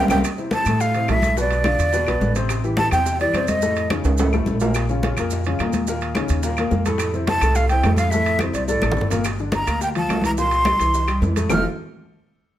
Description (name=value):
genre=Afro-Cuban jazz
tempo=213 BPM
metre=4/4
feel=straight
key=F major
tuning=A4 = 439 Hz
part: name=breathy jazz flute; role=melody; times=0.0-3.9, 7.3-11.6 s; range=D5 to F6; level=-21 LUFS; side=equal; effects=none
part: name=warm baby grand piano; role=accompaniment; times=0.0-11.6 s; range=A2 to C5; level=-24 LUFS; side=left 2 dB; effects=none
part: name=upright bass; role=bass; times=0.0-11.6 s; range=F1 to A2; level=-23 LUFS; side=right 1 dB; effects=none
part: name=bongos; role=percussion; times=0.1-11.6 s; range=none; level=-32 LUFS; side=left 3 dB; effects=none
part: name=claves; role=percussion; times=0.1-11.6 s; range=none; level=-32 LUFS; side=left 3 dB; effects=none
part: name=congas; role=percussion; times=0.1-11.6 s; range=none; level=-27 LUFS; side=left 1 dB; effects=none
part: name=maracas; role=percussion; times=0.1-11.6 s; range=none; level=-37 LUFS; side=right 8 dB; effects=none
part: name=timbales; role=percussion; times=0.1-11.6 s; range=none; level=-29 LUFS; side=right 5 dB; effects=none
room=light reverb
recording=none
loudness=-18 LUFS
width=side -12 dB against mid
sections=0.2-9.2 A section; 9.2-11.5 B section; 11.5-12.6 C section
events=drum fill 0.0, 4.0-4.7, 8.7-9.2; band accent 0.0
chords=0.2 Fmaj7; 1.4 Bdim; 1.9 E5; 2.5 Am7; 3.6 Faug7; 4.7 Bbm; 5.9 Ebsus2; 7.0 Fmaj7; 9.2 Gm7; 10.4 C7; 11.5 Fmaj7